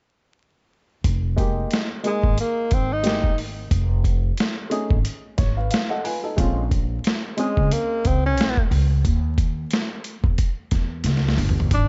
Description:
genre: hip hop, jazz-hop.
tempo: 90 BPM.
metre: 4/4.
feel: swing 58% on 16ths.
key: F minor.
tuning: A4 = 439 Hz.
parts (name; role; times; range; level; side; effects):
upright bass; bass; 1.0-11.9 s; F1 to Fb2; -25 LUFS; equal; none.
boom bap sampler-style drum kit; drums; 1.0-11.9 s; hi-hat, kick drum, snare drum, toms; -24 LUFS; equal; none.
dark baby grand piano; accompaniment; 1.4-8.3 s; Ab3 to G#5; -30 LUFS; equal; none.
mellow tenor saxophone; melody; 2.1-3.4, 7.4-11.9 s; Ab3 to Eb4; -27 LUFS; equal; none.
tube shaker; percussion; 11.7-11.9 s; none; -51 LUFS; equal; none.
room: small room ambience.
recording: dark, warm production, vinyl crackle, nothing above 7.8 kHz.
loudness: -22 LUFS.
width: mono.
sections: 1.0-11.9 A section.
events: grand piano fill 5.0-6.4; drum fill 11.0-11.7.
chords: 1.0 Fm11; 3.7 F7alt; 6.4 Bbm7; 9.0 Eb7b9.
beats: | 1.04 1.71 2.38 3.04 | 3.71 4.38 5.04 5.71 | 6.38 7.04 7.71 8.38 | 9.04 9.71 10.38 11.04 | 11.71.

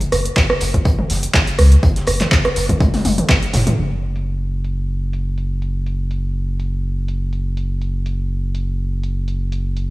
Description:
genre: acid house.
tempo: 123 BPM.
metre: 4/4.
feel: swing 54% on 16ths.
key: unclear.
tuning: A4 = 439 Hz.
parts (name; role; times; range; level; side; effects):
crunchy breakbeat drum kit; drums; 0.0-3.7 s; hi-hat, snare drum; -32 LUFS; equal; sidechain pumping on hats, high-pass filter on hats, high-pass filter on snare, high-pass filter on room.
punchy analog drum machine; drums; 0.0-9.9 s; handclaps, hi-hat, rim click, toms; -18 LUFS; equal; overdrive, low-pass filter on hats, low-pass filter on snare, low-pass filter on toms.
warm sub bass; bass; 0.1-9.9 s; F#1 to C#2; -19 LUFS; equal; tube saturation, sidechain pumping.
electronic kick drum; drums; 0.4-3.4 s; none; -16 LUFS; equal; overdrive.
room: light reverb, studio reverb.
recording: small room ambience.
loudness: -16 LUFS.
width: side -19 dB against mid.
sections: 0.0-3.8 A section; 3.8-9.9 B section.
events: drum fill 2.8-3.8.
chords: none.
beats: 0.37 0.85 1.34 | 1.83 2.32 2.81 3.29 | 3.78 4.27 4.76 5.24 | 5.73 6.22 6.71 7.20 | 7.68 8.17 8.66 9.15 | 9.63.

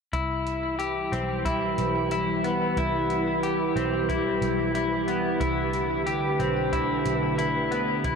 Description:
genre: dream pop.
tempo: 91 BPM.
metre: 4/4.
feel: straight.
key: C major.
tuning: A4 = 438 Hz.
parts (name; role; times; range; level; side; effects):
warbly tape-like pad; sustained chords; 0.1-8.2 s; D3 to F#5; -28 LUFS; right 2 dB; chorus, built-in reverb.
electric guitar at the edge of break-up; arpeggios; 0.1-8.2 s; B3 to G4; -26 LUFS; left 2 dB; lush chorus, ping-pong delay.
vintage muted picked electric bass; bass; 0.1-8.2 s; B1 to C2; -34 LUFS; right 1 dB; none.
soft vintage rhythm box; drums; 0.1-8.2 s; hi-hat, kick drum; -36 LUFS; equal; none.
room: wet huge ambient reverb, RT60 7.5 s.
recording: dreamy mix soaked in reverb.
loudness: -23 LUFS.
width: side -5 dB against mid.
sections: 0.1-8.2 A section.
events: none.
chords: 0.1 Cmaj7; 5.4 Am11.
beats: | 0.13 0.79 1.45 2.11 | 2.77 3.43 4.09 4.75 | 5.41 6.07 6.73 7.39 | 8.05.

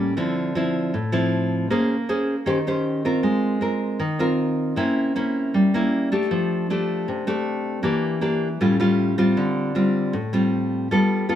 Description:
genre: bossa nova.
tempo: 156 BPM.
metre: 4/4.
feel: straight.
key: unclear.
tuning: A4 = 440 Hz.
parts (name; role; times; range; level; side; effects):
nylon-string guitar; solo; 0.0-11.4 s; A2 to C5; -20 LUFS; equal; none.
room: moderate stone room reverb, RT60 1.3 s.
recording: band playing live in one room.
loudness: -20 LUFS.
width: side -10 dB against mid.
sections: 0.2-11.4 A section.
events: none.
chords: 0.2 Dm9; 1.7 Bbm9; 2.5 Eb13; 3.2 Ab69; 4.8 C7b9; 6.3 F69; 7.8 Em7b5; 8.6 A7b13; 9.4 Dm7.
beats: | 0.17 0.55 0.94 1.32 | 1.70 2.08 2.47 2.85 | 3.23 3.62 4.00 4.38 | 4.77 5.15 5.54 5.92 | 6.30 6.68 7.07 7.45 | 7.83 8.22 8.60 8.98 | 9.37 9.75 10.13 10.52 | 10.90 11.29.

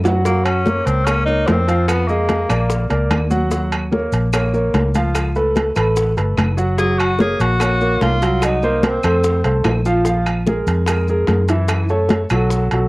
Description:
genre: Afro-Cuban jazz.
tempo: 147 BPM.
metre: 4/4.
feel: straight.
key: unclear.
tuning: A4 = 439 Hz.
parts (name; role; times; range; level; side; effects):
clear grand piano; accompaniment; 0.0-12.9 s; Fb3 to F#5; -19 LUFS; right 1 dB; cassette tape, plate reverb.
vintage muted fingered electric bass; bass; 0.0-12.9 s; Gb1 to F#2; -18 LUFS; equal; none.
bongos; percussion; 0.0-12.9 s; none; -28 LUFS; left 4 dB; none.
congas; percussion; 0.1-12.9 s; none; -21 LUFS; left 1 dB; none.
maracas; percussion; 0.1-12.9 s; none; -36 LUFS; left 3 dB; none.
timbales; percussion; 0.1-12.9 s; none; -24 LUFS; right 3 dB; none.
clear tenor saxophone; melody; 0.2-2.9, 6.8-9.7 s; Bb3 to Ab4; -20 LUFS; equal; cassette tape, plate reverb.
claves; percussion; 0.5-12.5 s; none; -32 LUFS; left 1 dB; none.
room: light reverb.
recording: home recording on cassette.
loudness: -14 LUFS.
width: side -22 dB against mid.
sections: 0.3-12.9 A section.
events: drum fill 0.0.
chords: 0.3 Gb; 1.9 Bb7b9; 2.7 Bbaug; 3.5 Ebm9; 5.2 Dbaug7; 6.8 Gb; 8.4 Cm7b5; 9.2 F; 10.1 Bb5; 11.7 Gbm7.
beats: | 0.25 0.66 1.07 1.48 | 1.89 2.29 2.70 3.11 | 3.52 3.93 4.34 4.74 | 5.15 5.56 5.97 6.38 | 6.79 7.20 7.61 8.01 | 8.42 8.83 9.24 9.65 | 10.06 10.47 10.88 11.29 | 11.69 12.10 12.51.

